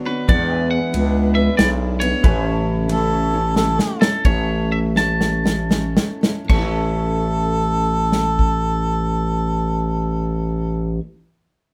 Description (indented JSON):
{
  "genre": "honky-tonk and classic country",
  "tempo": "74-92 BPM",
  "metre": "3/4",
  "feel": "swing 66% on 8ths",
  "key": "A major",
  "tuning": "A4 = 444 Hz",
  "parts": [
    { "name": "clear baby grand piano", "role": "accompaniment", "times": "0.0-4.2 s", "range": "D4 to C#5", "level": "-36 LUFS", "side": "equal", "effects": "none" },
    { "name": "picked steel-string acoustic guitar", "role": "accompaniment", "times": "0.0-11.2 s", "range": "E2 to C#5", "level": "-28 LUFS", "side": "equal", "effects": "none" },
    { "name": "pedal steel guitar", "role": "sustained chords", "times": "0.0-11.0 s", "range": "D4 to A5", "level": "-34 LUFS", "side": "equal", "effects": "none" },
    { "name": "warm studio string section", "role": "sustained chords", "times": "0.0-4.2 s", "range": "C#3 to E4", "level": "-34 LUFS", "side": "equal", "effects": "none" },
    { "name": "twangy electric guitar", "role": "melody", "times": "0.1-11.0 s", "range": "A4 to C#6", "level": "-27 LUFS", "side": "equal", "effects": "none" },
    { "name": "growling FM bass", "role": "bass", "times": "0.3-11.0 s", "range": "A1 to E2", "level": "-23 LUFS", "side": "equal", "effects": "none" },
    { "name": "natural country drum kit", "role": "drums", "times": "0.3-8.6 s", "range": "crash cymbal, kick drum, ride cymbal, snare drum", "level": "-20 LUFS", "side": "equal", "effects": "none" },
    { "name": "warm harmonica", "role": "second line", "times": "2.9-11.0 s", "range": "A4", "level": "-25 LUFS", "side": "equal", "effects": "none" }
  ],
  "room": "moderate small room reverb, RT60 0.5 s",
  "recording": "heard from further back in the room",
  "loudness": "-19 LUFS",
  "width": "mono",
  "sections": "0.0-4.2 A section; 4.2-6.5 B section; 6.5-11.4 C section",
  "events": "slowing down 2.2-6.5; drum fill 3.6-4.2, 5.0-6.5",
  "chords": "0.3 E7; 2.2 A"
}